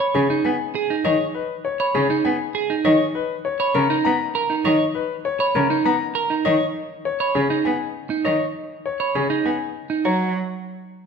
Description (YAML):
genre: classical, minimalist pattern music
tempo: 100 BPM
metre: 3/4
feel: straight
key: unclear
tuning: A4 = 440 Hz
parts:
  - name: clear concert grand piano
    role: melody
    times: 0.0-10.3 s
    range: G#4 to A#5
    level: -24 LUFS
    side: left 8 dB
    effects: none
  - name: electric guitar at the edge of break-up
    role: arpeggios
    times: 0.0-10.3 s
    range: C#4 to C#5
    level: -23 LUFS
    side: right 6 dB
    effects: none
  - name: xylophone with soft rubber mallets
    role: arpeggios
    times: 0.0-10.3 s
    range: A#5 to B5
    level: -28 LUFS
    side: left 1 dB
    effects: none
  - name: rich cello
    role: accompaniment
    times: 0.1-10.3 s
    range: C#3 to B3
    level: -24 LUFS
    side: equal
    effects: none
room: wet recital hall reverb, RT60 1.6 s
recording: minimal, uncompressed stereo recording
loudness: -19 LUFS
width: side -6 dB against mid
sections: 0.0-10.0 A section; 10.0-11.1 B section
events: none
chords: 0.0 G#m; 2.8 Bmaj7; 6.4 G#m; 10.0 F#